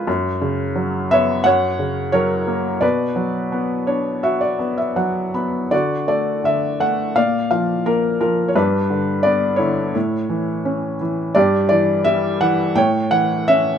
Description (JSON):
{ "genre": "classical, lyrical solo piano", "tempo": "85 BPM", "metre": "4/4", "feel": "rubato", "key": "B minor, D major from 5.7 s", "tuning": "A4 = 440 Hz", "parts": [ { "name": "felt-muted upright piano", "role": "solo", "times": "0.0-13.8 s", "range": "F#2 to B5", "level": "-16 LUFS", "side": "equal", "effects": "none" } ], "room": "light reverb", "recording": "dark, warm production, faint mains hum", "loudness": "-16 LUFS", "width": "side -8 dB against mid", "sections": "0.0-5.7 A section; 5.7-13.8 B section", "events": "felt piano fill 3.5-5.7", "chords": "0.1 F#sus4; 1.5 F#; 2.8 Bm; 5.7 D; 7.2 Bb; 8.6 G; 9.9 A; 11.4 Em/G; 12.8 A", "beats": "| 0.08 0.77 1.46 2.14 | 2.83 3.53 4.24 4.98 | 5.73 6.45 7.16 7.87 | 8.56 9.25 9.95 10.66 | 11.36 12.06 12.76 13.48" }